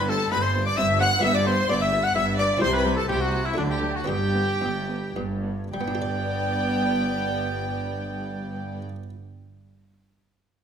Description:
classical, baroque-style concerto movement with solo episodes; 103-131 BPM; 3/4; straight; G major; A4 = 440 Hz
rich chamber violin section; melody; 0.0-8.8 s; D5 to F#6; -31 LUFS; left 3 dB
warm oboe; melody; 0.0-8.8 s; D4 to G5; -27 LUFS; left 1 dB
buff-stop harpsichord; accompaniment; 0.0-9.1 s; G2 to D5; -33 LUFS; right 1 dB
rich chamber double bass section; bass; 0.0-8.8 s; G1 to D2; -30 LUFS; right 2 dB
warm chamber cello section; bass; 0.0-8.8 s; G2 to D3; -30 LUFS; right 2 dB
rich chamber violin section; second line; 0.1-8.8 s; D4 to F#5; -30 LUFS; left 2 dB
rich chamber viola section; accompaniment; 0.1-8.8 s; F#3 to C4; -32 LUFS; right 1 dB
moderate recital hall reverb, RT60 1.6 s; -22 LUFS; side -8 dB against mid
0.0-5.7 A section; 5.7-9.2 B section
slowing down 1.9-5.7
0.0 C/G; 1.2 G; 2.6 C; 3.6 D; 4.1 G

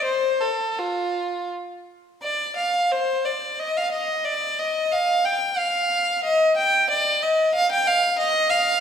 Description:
classical, baroque-style suite movement for unaccompanied violin; 80-95 BPM; 3/4; rubato; A4 = 442 Hz
clear violin; solo; 0.0-8.8 s; F4 to G5; -20 LUFS; equal
wet recital hall reverb, RT60 1.7 s; recorded in a church or concert hall; -20 LUFS; side -8 dB against mid
0.0-2.2 A section; 2.2-8.8 B section

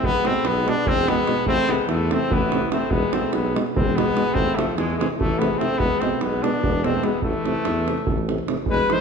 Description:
balkan folk, Balkan brass band; 291 BPM (eighths); 7/8; straight; A harmonic minor; A4 = 440 Hz
clear trumpet; melody; 0.0-9.0 s; G#3 to C5; -23 LUFS; left 1 dB
clear alto saxophone; second line; 0.0-9.0 s; E3 to B3; -28 LUFS; left 5 dB
warm tuba; bass; 0.0-8.8 s; E1 to E2; -27 LUFS; equal
davul; percussion; 0.0-9.0 s; -25 LUFS; right 3 dB
dark euphonium; accompaniment; 0.2-9.0 s; B2 to E3; -29 LUFS; right 5 dB
warm trombone; accompaniment; 0.3-9.0 s; G#3 to A3; -31 LUFS; left 6 dB
wet scoring stage reverb, RT60 1.6 s; minimal, uncompressed stereo recording; -19 LUFS; side -6 dB against mid
0.0-8.7 A section
0.0 E; 1.5 Am; 2.9 E; 4.3 Am; 5.8 E; 7.2 Am

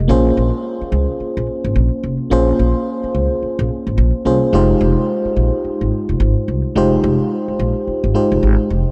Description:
R&B, new jack swing; 108 BPM; 4/4; swing 60% on 16ths; Bb dorian; A4 = 441 Hz
FM electric piano; accompaniment; 0.0-8.9 s; Ab3 to C5; -20 LUFS; equal
upright bass; bass; 0.0-8.8 s; F1 to Db2; -19 LUFS; equal
moderate huge ambient reverb, RT60 4.1 s; dreamy mix soaked in reverb; -17 LUFS; mono
0.1-8.9 A section
0.1 Bbm9; 4.5 Fm9

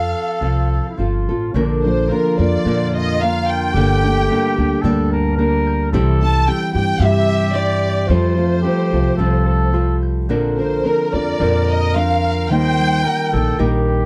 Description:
mexican folk, mariachi; 110 BPM; 4/4; straight; Bb major; A4 = 440 Hz
dark studio violin section; melody; 0.0-13.6 s; Bb4 to A5; -24 LUFS; equal
mellow trumpet; second line; 0.0-14.1 s; D4 to C5; -27 LUFS; equal
nylon-string guitar; accompaniment; 0.0-14.1 s; G2 to Bb4; -23 LUFS; equal
upright bass; bass; 0.0-14.1 s; G1 to G2; -22 LUFS; equal
concert harp; arpeggios; 1.6-14.1 s; D3 to G6; -25 LUFS; equal
little or no reverb; dry, close 1970s-style studio recording; -17 LUFS; mono
0.0-1.5 A section; 1.5-14.1 B section
0.0 F; 1.5 Bb; 3.7 Gmadd9; 5.9 C; 8.1 Fadd9; 10.3 Bbadd9; 12.5 Eb

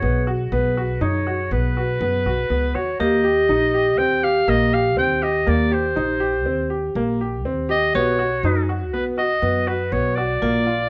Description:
contemporary instrumental, chamber music in an uneven meter; 121 BPM; 5/4; straight; A4 = 440 Hz
clear clarinet; melody; 0.0-10.9 s; B4 to G5; -25 LUFS; equal
vibraphone with hard mallets; second line; 0.0-10.9 s; F4 to Ab4; -27 LUFS; equal
clear grand piano; arpeggios; 0.0-10.9 s; Bb3 to G4; -26 LUFS; equal
upright bass; bass; 0.0-10.9 s; Bb1 to F#2; -27 LUFS; equal
light reverb; close, detailed microphones; -20 LUFS; mono
0.0-10.9 A section
0.0 B; 3.0 Eb6; 7.9 B

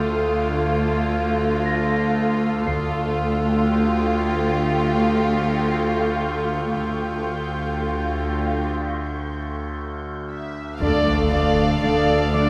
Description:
cinematic, suspense film score; 59 BPM; 4/4; straight; A4 = 441 Hz
warm chamber violin section; melody; 0.0-12.5 s; G4 to F5; -33 LUFS; equal
warm chamber violin section; second line; 0.0-12.5 s; F4 to D5; -28 LUFS; equal
warm chamber viola section; accompaniment; 0.0-12.5 s; A3 to D4; -29 LUFS; equal
ethereal airy pad; sustained chords; 0.0-12.5 s; A4 to A5; -32 LUFS; equal
warm chamber cello section; bass; 0.0-12.5 s; D2; -28 LUFS; equal
overtone-sweeping drone; drone; 0.0-12.5 s; D2; -30 LUFS; equal; chorus, built-in reverb
celesta; texture; 0.0-12.5 s; D5 to C7; -36 LUFS; equal
warm chamber violin section; texture; 0.0-10.3 s; C6 to G6; -39 LUFS; equal
warm chamber double bass section; bass; 2.7-12.5 s; D2; -30 LUFS; equal
warm chamber cello section; riff; 10.8-12.5 s; D3; -31 LUFS; equal
taiko ensemble; drums; 10.8-12.5 s; -35 LUFS; equal
sub drop; sound effects; 10.8-12.5 s; -33 LUFS; equal
wet concert hall reverb, RT60 2.1 s; recorded in a church or concert hall; -22 LUFS; mono
0.0-10.8 A section; 10.8-12.5 B section
break 8.8-10.8; impact 10.8-12.5
0.0 Dm; 2.7 Fadd9/D; 10.8 Dm

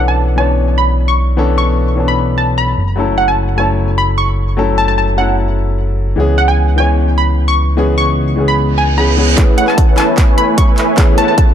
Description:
future bass; 150 BPM; 4/4; half-time; A major; A4 = 440 Hz
glassy wavetable pluck; melody; 0.0-11.4 s; F#5 to C#6; -17 LUFS; equal; chorus, sidechain pumping, digital delay
clear baby grand piano; accompaniment; 0.0-11.5 s; E3 to C#5; -17 LUFS; left 4 dB; sidechain pumping, digital delay
fat analog bass; bass; 0.0-9.4 s; F#1 to C#2; -14 LUFS; equal; tube saturation, sidechain pumping
reverse cymbal and riser; sound effects; 8.7-11.5 s; -22 LUFS; right 6 dB
supersaw chords; riff; 9.4-11.3 s; A3 to G#5; -15 LUFS; right 2 dB; phaser, vintage 12-bit sampler grit, sidechain pumping, low-pass filter
big-room dance drum kit; drums; 9.4-11.5 s; handclaps, hi-hat; -21 LUFS; right 1 dB; high-pass filter on hats, high-pass filter on snare, high-pass filter on cymbals
electronic kick drum; drums; 9.4-11.5 s; -10 LUFS; equal
light reverb, digital ambience; dark, warm production; -10 LUFS; side -9 dB against mid
0.0-9.4 A section; 9.4-11.5 B section
reverse cymbal 8.7-9.4; build-up 9.4-11.5; drum fill 9.4-11.5; filter sweep on supersaw synth 9.4-11.5
0.0 Bm11; 2.8 F#m7; 6.2 C#m7; 9.4 Amaj9

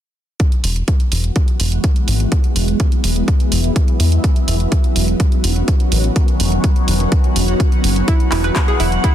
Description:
progressive house; 125 BPM; 4/4; straight; E major; A4 = 438 Hz
shimmering ambient pad; sustained chords; 1.2-9.1 s; D#3 to F#4; -21 LUFS; equal; chorus, built-in reverb, phaser, sidechain pumping
electronic kick drum; drums; 0.4-9.1 s; -14 LUFS; equal; overdrive
house drum kit; drums; 0.4-9.1 s; handclaps, hi-hat; -24 LUFS; right 3 dB; overdrive
round analog bass; bass; 0.6-9.0 s; E1 to E2; -16 LUFS; equal; sidechain pumping
glassy wavetable pluck; arpeggios; 8.1-9.1 s; E4 to B4; -20 LUFS; right 3 dB; chorus, sidechain pumping, digital delay
drifting glass-harmonics texture; texture; 8.2-9.1 s; F#5; -26 LUFS; left 3 dB; chorus, built-in reverb, sidechain pumping
little or no reverb; dense, heavily limited modern master; -13 LUFS; side -11 dB against mid
0.4-9.1 A section
filter sweep on ambient pad 0.4-9.1
0.4 Eadd9; 4.2 Badd9/E; 8.1 Eadd9

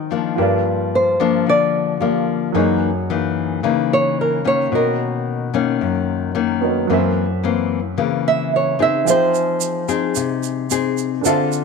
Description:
bossa nova; 110 BPM; 4/4; straight; A4 = 438 Hz
nylon-string guitar; accompaniment; 0.0-11.6 s; Gb2 to A4; -19 LUFS; left 8 dB
warm grand piano; accompaniment; 0.0-11.6 s; F3 to D6; -25 LUFS; right 15 dB
nylon-string guitar; melody; 1.0-9.9 s; Bb4 to Fb5; -18 LUFS; right 2 dB
tube shaker; percussion; 9.1-11.6 s; -25 LUFS; right 21 dB
light reverb; 1960s-style stereo with parts hard left and right; -16 LUFS; side -4 dB against mid
0.0-11.6 A section
nylon-string guitar solo 0.0-11.6
0.4 Gm7; 2.5 Gb13; 4.7 Bmaj9; 6.9 Gb7#11; 9.1 Fm7

